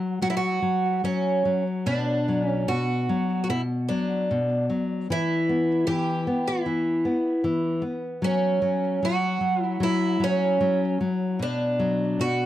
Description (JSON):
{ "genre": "fado-style ballad", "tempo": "75 BPM", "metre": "4/4", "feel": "rubato", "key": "B minor", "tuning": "A4 = 440 Hz", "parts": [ { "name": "nylon-string guitar", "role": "accompaniment", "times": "0.0-12.5 s", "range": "B2 to B3", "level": "-25 LUFS", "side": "left 2 dB", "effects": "none" }, { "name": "picked twelve-string acoustic guitar", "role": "melody", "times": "0.2-12.5 s", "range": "C#4 to G4", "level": "-25 LUFS", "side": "right 2 dB", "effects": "tape echo" } ], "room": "light reverb", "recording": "dry, close 1970s-style studio recording", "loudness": "-22 LUFS", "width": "side -13 dB against mid", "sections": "0.0-12.5 A section", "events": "none", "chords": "0.0 N.C.; 1.9 Bm; 5.1 E5; 8.2 N.C.; 11.4 Bm" }